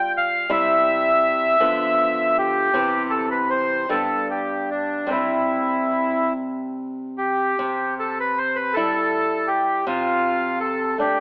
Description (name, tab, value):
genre	romantic duo for bandoneon and classical guitar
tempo	47-56 BPM (dotted quarters)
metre	6/8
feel	rubato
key	C major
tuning	A4 = 440 Hz
part	bandoneon	melody	0.0-11.2 s	D4 to G5	-19 LUFS	equal	none
part	nylon-string guitar	accompaniment	0.0-11.2 s	G2 to F4	-25 LUFS	equal	none
room	moderate recital hall reverb, RT60 1.3 s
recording	telephone sound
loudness	-18 LUFS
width	side -35 dB against mid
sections	0.0-7.6 A section; 7.6-11.2 A section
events	none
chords	0.5 C; 1.6 Bdim/D; 2.7 C; 3.9 G; 5.1 C; 9.9 Dm7/C